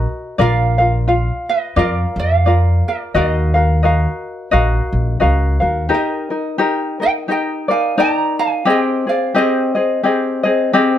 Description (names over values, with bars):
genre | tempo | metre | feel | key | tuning
Hawaiian | 87 BPM | 4/4 | swing 58% on 8ths | Eb minor, Eb major from 5.9 s | A4 = 441 Hz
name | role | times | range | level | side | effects
ukulele | melody | 0.0-11.0 s | Bb4 to Bb5 | -20 LUFS | right 5 dB | none
tenor ukulele | accompaniment | 0.0-11.0 s | C4 to F5 | -16 LUFS | left 2 dB | none
upright bass | bass | 0.0-5.9 s | Bb1 to F2 | -16 LUFS | equal | none
room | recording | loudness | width
light reverb | none | -14 LUFS | side -10 dB against mid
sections
0.0-5.9 A section; 5.9-11.0 B section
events
none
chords
0.4 Bb; 3.1 Ebmadd9; 5.9 Ebmaj7; 8.7 Abmaj7